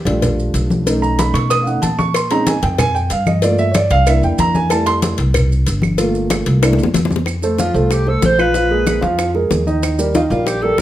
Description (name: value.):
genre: Afro-Cuban jazz.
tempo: 187 BPM.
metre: 4/4.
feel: straight.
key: F major.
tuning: A4 = 440 Hz.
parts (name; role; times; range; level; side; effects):
dark concert grand piano; accompaniment; 0.0-10.8 s; Eb3 to D#6; -17 LUFS; right 2 dB; none.
upright bass; bass; 0.1-10.8 s; G1 to B2; -18 LUFS; equal; none.
congas; percussion; 0.1-10.8 s; none; -21 LUFS; left 1 dB; none.
cowbell and bongos; percussion; 0.1-10.8 s; none; -23 LUFS; left 5 dB; none.
maracas; percussion; 0.1-10.8 s; none; -30 LUFS; right 5 dB; none.
claves; percussion; 2.1-10.6 s; none; -29 LUFS; right 8 dB; none.
breathy alto saxophone; melody; 7.6-10.8 s; F4 to C5; -18 LUFS; equal; none.
room: light reverb.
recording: none.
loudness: -13 LUFS.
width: side -13 dB against mid.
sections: 0.0-7.3 A section; 7.3-10.8 B section.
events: grand piano solo 0.0-7.3; drum fill 6.6-7.3.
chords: 0.0 Ebmaj9#11 (rootless); 0.9 B9; 2.1 Bbm11; 3.4 Gm7; 4.1 C7; 4.7 Fmaj7; 6.0 Gm7; 6.6 C13; 7.3 F; 8.5 Bb5; 9.8 Eb.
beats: 0.22 0.54 | 0.86 1.19 1.51 1.83 | 2.15 2.47 2.79 3.11 | 3.43 3.75 4.07 4.39 | 4.71 5.03 5.35 5.67 | 5.99 6.31 6.63 6.95 | 7.27 7.59 7.91 8.23 | 8.55 8.87 9.19 9.51 | 9.83 10.15 10.47 10.79.